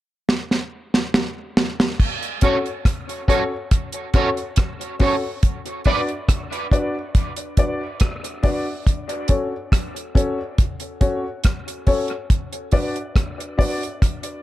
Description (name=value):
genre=dub reggae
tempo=70 BPM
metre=4/4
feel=straight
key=F# minor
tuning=A4 = 440 Hz
part: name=deep reggae drum kit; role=drums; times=0.3-14.4 s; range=crash cymbal, hi-hat, kick drum, rim click, snare drum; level=-19 LUFS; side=equal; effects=none
part: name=electric guitar at the edge of break-up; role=accompaniment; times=2.4-6.0 s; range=C#4 to D5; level=-26 LUFS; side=right 4 dB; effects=ensemble chorus, dub echo
part: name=dark upright piano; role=stabs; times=2.4-13.8 s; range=C#4 to D5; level=-25 LUFS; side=left 2 dB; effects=dub echo
room=light reverb, small room ambience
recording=dark, warm production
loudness=-19 LUFS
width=side -15 dB against mid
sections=0.0-2.0 A section; 2.0-14.4 B section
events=drum fill 0.3-2.0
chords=0.0 N.C.; 2.0 F#m; 5.4 Bm; 8.9 F#m; 12.3 Bm